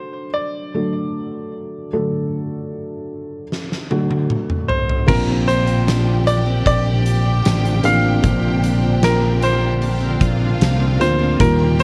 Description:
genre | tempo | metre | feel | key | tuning
pop ballad | 76 BPM | 4/4 | straight | unclear | A4 = 442 Hz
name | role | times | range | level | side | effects
bright grand piano | melody | 0.0-11.8 s | Bb4 to F5 | -24 LUFS | equal | none
felt-muted upright piano | accompaniment | 0.0-11.8 s | Bb2 to A4 | -25 LUFS | equal | none
huge arena drum kit | drums | 3.5-11.8 s | crash cymbal, hi-hat, kick drum, snare drum, toms | -24 LUFS | equal | none
bright symphonic violin section | second line | 5.1-11.8 s | F4 to G5 | -31 LUFS | equal | none
shimmering ambient pad | sustained chords | 7.0-11.8 s | D3 to F4 | -30 LUFS | equal | chorus, built-in reverb
picked plugged-in steel-string acoustic guitar | arpeggios | 5.1-11.8 s | Bb2 to Eb4 | -30 LUFS | equal | tape echo
fingered electric bass | bass | 5.1-11.8 s | A1 to Eb2 | -20 LUFS | equal | none
room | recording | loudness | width
little or no reverb | worn, warbling old tape, cassette tape, warbly pitch drift | -18 LUFS | mono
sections
0.0-5.1 A section; 5.1-11.8 B section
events
drum fill 3.5-5.1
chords
0.0 D; 5.1 Bbadd9

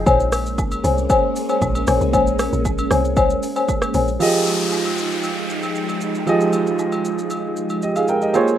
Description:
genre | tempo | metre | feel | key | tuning
amapiano | 116 BPM | 4/4 | straight | F minor | A4 = 441 Hz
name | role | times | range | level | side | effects
soft string machine | sustained chords | 0.0-8.6 s | F3 to G5 | -24 LUFS | right 1 dB | ensemble chorus, sidechain pumping
deep log drum bass | bass | 0.0-4.2 s | Bb1 to C2 | -22 LUFS | equal | none
buzzing marimba with medium mallets | stabs | 0.1-4.1 s | C5 to Ab5 | -19 LUFS | left 3 dB | digital delay
deep house drum kit | drums | 0.1-8.6 s | hi-hat, kick drum, rim click, shaker | -24 LUFS | equal | none
agogo bells and woodblock | percussion | 0.1-8.5 s | none | -30 LUFS | equal | none
warm baby grand piano | accompaniment | 4.2-8.6 s | F3 to G5 | -19 LUFS | right 3 dB | none
downlifter | sound effects | 4.2-8.3 s | none | -27 LUFS | left 1 dB | none
room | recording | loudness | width
light reverb | rough home demo mix | -17 LUFS | side -10 dB against mid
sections
0.0-4.2 A section; 4.2-8.6 B section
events
drop 0.0-4.2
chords
0.1 Bbm9; 4.2 Fm9

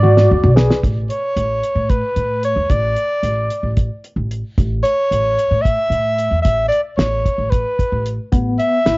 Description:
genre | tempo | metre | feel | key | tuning
progressive instrumental, band music in an uneven meter | 224 BPM (eighths) | 7/8 | straight | A major | A4 = 440 Hz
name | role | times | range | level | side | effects
breathy soprano saxophone | melody | 0.0-9.0 s | B4 to E5 | -18 LUFS | equal | cassette tape
breathy flugelhorn | second line | 0.0-0.8 s | B4 to D5 | -20 LUFS | right 3 dB | cassette tape, analog delay
dark grand piano | accompaniment | 0.0-0.8 s | none | barely audible | none | none
overdriven tine electric piano | arpeggios | 0.0-0.8, 8.3-9.0 s | B3 to G#4 | -18 LUFS | left 3 dB | medium tremolo, cassette tape
upright bass | bass | 0.0-9.0 s | A1 to A2 | -18 LUFS | equal | none
cloth-damped thuddy drum kit | drums | 0.0-9.0 s | hi-hat, kick drum, snare drum, toms | -17 LUFS | equal | cassette tape
room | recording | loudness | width
light reverb, small room ambience | home recording on cassette, nothing above 7.5 kHz | -14 LUFS | side -23 dB against mid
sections
0.8-9.0 A section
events
drum fill 0.0-0.8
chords
0.0 E7; 0.8 Aadd9; 2.7 Asus4; 4.6 A; 6.5 Aadd9; 8.3 Asus2

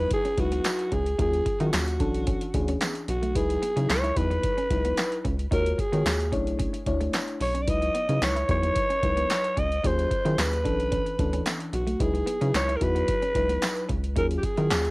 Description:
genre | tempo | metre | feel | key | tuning
early-eighties boogie funk | 111 BPM | 4/4 | straight | unclear | A4 = 438 Hz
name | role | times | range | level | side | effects
breathy alto saxophone | melody | 0.0-14.9 s | F#4 to D#5 | -27 LUFS | equal | cassette tape
FM electric piano with soft pad layer | accompaniment | 0.0-14.8 s | E3 to C#5 | -31 LUFS | left 2 dB | chorus, tremolo, cassette tape
clean electric guitar | riff | 0.0-14.7 s | A3 to E4 | -36 LUFS | right 2 dB | wide subtle chorus, cassette tape
rubbery square bass | bass | 0.0-14.9 s | B1 to D#3 | -28 LUFS | equal | none
electro analog drum machine | drums | 0.1-14.9 s | handclaps, hi-hat, kick drum, snare drum | -29 LUFS | equal | cassette tape
tambourine | percussion | 0.6-14.8 s | none | -38 LUFS | right 4 dB | none
room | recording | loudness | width
light reverb | home recording on cassette | -23 LUFS | side -23 dB against mid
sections
0.0-14.9 A section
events
none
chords
0.0 C#m11; 1.2 D#m11; 2.0 Bm11; 3.4 C#m11; 5.5 D#m11; 6.3 Bm11; 7.7 C#m11; 9.8 D#m11; 10.7 Bm11; 12.0 C#m11; 14.2 D#m11

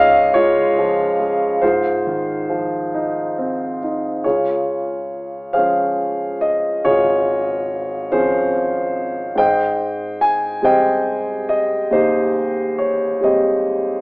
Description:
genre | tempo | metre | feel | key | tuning
classical, lyrical solo piano | 46 BPM (dotted quarters) | 6/8 | rubato | Ab major | A4 = 440 Hz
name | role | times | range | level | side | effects
warm concert grand piano | solo | 0.0-14.0 s | Ab1 to Ab5 | -16 LUFS | equal | none
room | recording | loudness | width
moderate scoring stage reverb, RT60 1.7 s | AM radio sound | -16 LUFS | side -26 dB against mid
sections
0.0-4.2 A section; 4.2-14.0 B section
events
none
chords
0.0 Db; 1.6 Ab6; 4.2 Dbmaj7; 9.4 Abmaj7

